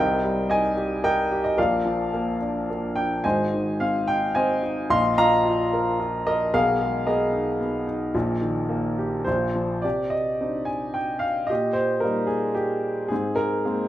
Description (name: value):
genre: classical, lyrical solo piano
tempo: 110 BPM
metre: 3/4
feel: rubato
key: Eb major, C minor from 9.8 s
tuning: A4 = 440 Hz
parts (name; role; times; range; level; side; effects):
- warm grand piano; solo; 0.0-13.9 s; Ab1 to C6; -21 LUFS; equal; none
room: moderate recital hall reverb, RT60 1.4 s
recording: minimal, uncompressed stereo recording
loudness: -21 LUFS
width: side -13 dB against mid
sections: 0.0-9.8 A section; 9.8-13.9 B section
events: none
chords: 0.0 Cm7; 1.6 Bb; 3.2 Ab; 4.9 Ebsus2/Bb; 6.5 Abmadd9/Cb; 8.1 Eb/Bb; 9.3 Bb5; 9.8 Cmadd9; 11.5 Eb/Bb; 13.1 Abadd9